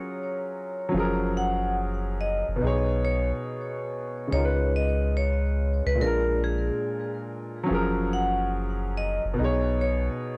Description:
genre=lo-fi hip hop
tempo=71 BPM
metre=4/4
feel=swing 64% on 16ths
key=F# major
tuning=A4 = 439 Hz
part: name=vibraphone with hard mallets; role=melody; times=0.0-10.1 s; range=G#4 to F#5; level=-33 LUFS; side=equal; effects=tape echo
part: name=warm upright piano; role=accompaniment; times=0.0-10.4 s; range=A#2 to C#5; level=-30 LUFS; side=equal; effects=none
part: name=soft dub sub bass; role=bass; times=0.9-10.1 s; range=F#1 to C#2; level=-30 LUFS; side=equal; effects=none
room=light reverb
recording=dry, gritty hardware recording, transformer saturation, cassette tape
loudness=-27 LUFS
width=mono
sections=0.9-10.4 A section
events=none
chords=0.0 F#maj7; 2.6 B69; 4.3 C#7; 6.0 A#7; 7.7 F#maj7; 9.4 B69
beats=0.08 | 0.93 1.77 2.62 3.46 | 4.31 5.15 6.00 6.84 | 7.69 8.53 9.38 10.22

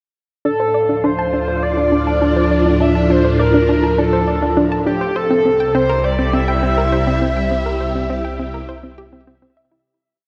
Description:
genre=ambient, sequencer-driven space music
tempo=102 BPM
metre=4/4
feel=straight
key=D minor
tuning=A4 = 440 Hz
part: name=pulse-width lead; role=melody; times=0.5-9.3 s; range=G4 to E5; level=-21 LUFS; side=equal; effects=chorus, delay
part: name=phased string machine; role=sustained chords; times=0.5-9.9 s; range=A2 to G4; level=-21 LUFS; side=equal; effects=ensemble chorus, phaser
part: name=hollow square pluck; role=riff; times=0.5-9.8 s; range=C4 to A5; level=-23 LUFS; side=equal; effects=chorus, delay
part: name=round analog bass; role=bass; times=0.5-9.8 s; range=C2 to D2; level=-24 LUFS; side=equal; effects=none
room=wet scoring stage reverb, RT60 2.0 s, digital ambience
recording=none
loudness=-16 LUFS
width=mono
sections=0.5-9.9 A section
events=fade-out 6.7-9.9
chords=0.5 Dm; 5.2 C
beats=| 0.45 1.04 1.63 2.22 | 2.81 3.39 3.98 4.57 | 5.16 5.75 6.33 6.92 | 7.51 8.10 8.69 9.28

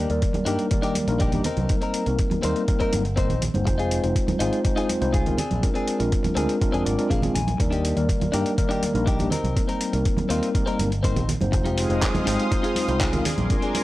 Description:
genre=nu-disco, nu disco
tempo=122 BPM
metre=4/4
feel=straight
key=F dorian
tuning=A4 = 439 Hz
part: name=mellow tine electric piano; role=accompaniment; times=0.0-13.8 s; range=Eb3 to D5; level=-25 LUFS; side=equal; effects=medium stereo tremolo, sidechain pumping, analog delay
part: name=direct-recorded clean electric guitar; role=riff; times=0.0-13.8 s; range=C4 to Ab5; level=-30 LUFS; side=left 3 dB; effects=lush chorus
part: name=picked electric bass with an envelope filter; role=bass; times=0.0-13.5 s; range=F1 to G2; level=-26 LUFS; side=equal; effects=none
part: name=dusty soul sampler-style drum kit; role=drums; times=0.1-13.8 s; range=handclaps, hi-hat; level=-32 LUFS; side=left 1 dB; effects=overdrive
part: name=electronic kick drum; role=drums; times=0.2-13.6 s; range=none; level=-24 LUFS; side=equal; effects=overdrive
part: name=congas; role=percussion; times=0.3-13.8 s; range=none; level=-30 LUFS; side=right 2 dB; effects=none
part: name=lush unison pad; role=sustained chords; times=11.5-13.8 s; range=Ab3 to Eb6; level=-29 LUFS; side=equal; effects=chorus, sidechain pumping
room=light reverb, digital ambience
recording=dry, gritty hardware recording, transformer saturation, cassette tape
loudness=-20 LUFS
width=side -17 dB against mid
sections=0.0-13.8 A section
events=clean electric guitar fill 6.6-7.6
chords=0.0 Ebmaj7; 1.4 Cm7; 3.7 Fm7; 5.4 Bb9; 7.6 Ebmaj7; 9.3 Cm7; 11.5 Fm7; 13.3 Bb9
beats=0.22 0.71 1.21 | 1.70 2.19 2.68 3.17 | 3.66 4.16 4.65 5.14 | 5.63 6.12 6.61 7.11 | 7.60 8.09 8.58 9.07 | 9.56 10.06 10.55 11.04 | 11.53 12.02 12.52 13.01 | 13.50

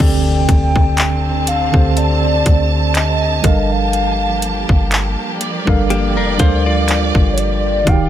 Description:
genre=contemporary R&B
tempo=61 BPM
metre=4/4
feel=swing 54% on 16ths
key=G minor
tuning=A4 = 444 Hz
part: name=hollow clarinet-like synth lead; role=melody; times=0.0-8.1 s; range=C#5 to G5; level=-20 LUFS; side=left 2 dB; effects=chorus, tape echo
part: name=mellow tine electric piano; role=accompaniment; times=0.0-8.1 s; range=D3 to F5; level=-19 LUFS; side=right 2 dB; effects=medium stereo tremolo
part: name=warm studio string section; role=sustained chords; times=0.0-8.1 s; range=D3 to A5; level=-22 LUFS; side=right 3 dB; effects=sidechain pumping
part: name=warm 808-style bass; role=bass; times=0.0-8.1 s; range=Eb1 to D2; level=-18 LUFS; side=equal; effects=none
part: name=trap drum kit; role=drums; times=0.0-8.1 s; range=crash cymbal, handclaps, hi-hat, kick drum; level=-15 LUFS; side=equal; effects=none
part: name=impact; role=sound effects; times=0.1-3.9 s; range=none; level=-28 LUFS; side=equal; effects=none
part: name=soft synth bell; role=texture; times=1.0-8.1 s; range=D5 to A5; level=-32 LUFS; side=left 5 dB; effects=none
part: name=direct-recorded clean electric guitar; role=arpeggios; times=5.9-7.8 s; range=Bb3 to D5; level=-22 LUFS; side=left 6 dB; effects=tape echo
room=little or no reverb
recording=none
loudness=-12 LUFS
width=side -11 dB against mid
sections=0.0-8.1 A section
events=impact 0.0-3.9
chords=0.0 D7sus4; 3.4 Gm9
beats=| 0.00 0.98 1.97 2.95 | 3.93 4.92 5.90 6.88 | 7.87

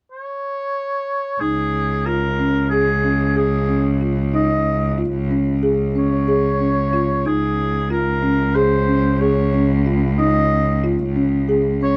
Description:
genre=contemporary instrumental, contemporary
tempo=184 BPM (eighths)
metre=9/8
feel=straight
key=Db major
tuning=A4 = 440 Hz
part: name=mellow oboe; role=melody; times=0.1-12.0 s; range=Ab4 to Eb5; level=-24 LUFS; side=equal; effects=none
part: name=folk marimba with soft mallets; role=arpeggios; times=1.4-12.0 s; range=Db4 to Ab4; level=-22 LUFS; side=equal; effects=none
part: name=clear cello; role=bass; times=1.4-12.0 s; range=Db2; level=-22 LUFS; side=equal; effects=none
room=little or no reverb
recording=dark, warm production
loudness=-19 LUFS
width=mono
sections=0.0-1.4 A section; 1.4-12.0 B section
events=none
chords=0.0 N.C.; 1.4 Dbadd9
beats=0.11 0.43 0.76 1.09 | 1.41 1.74 2.06 2.39 2.71 3.04 3.36 3.69 4.01 | 4.34 4.66 4.99 5.32 5.64 5.96 6.29 6.62 6.94 | 7.26 7.59 7.92 8.24 8.57 8.89 9.22 9.54 9.87 | 10.19 10.52 10.84 11.17 11.49 11.82

